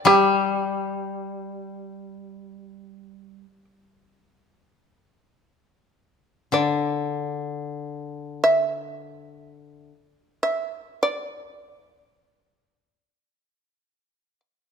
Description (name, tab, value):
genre	japanese traditional, Japanese chamber music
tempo	free time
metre	none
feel	none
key	unclear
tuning	A4 = 440 Hz
part	shamisen	melody	0.0-14.4 s	G4 to E5	-21 LUFS	right 2 dB	none
part	koto	accompaniment	0.1-9.9 s	D3 to G3	-24 LUFS	left 5 dB	none
room	moderate recital hall reverb, RT60 1.7 s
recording	close, detailed microphones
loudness	-22 LUFS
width	side -6 dB against mid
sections	0.0-4.9 A section; 4.9-14.7 A section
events	none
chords	none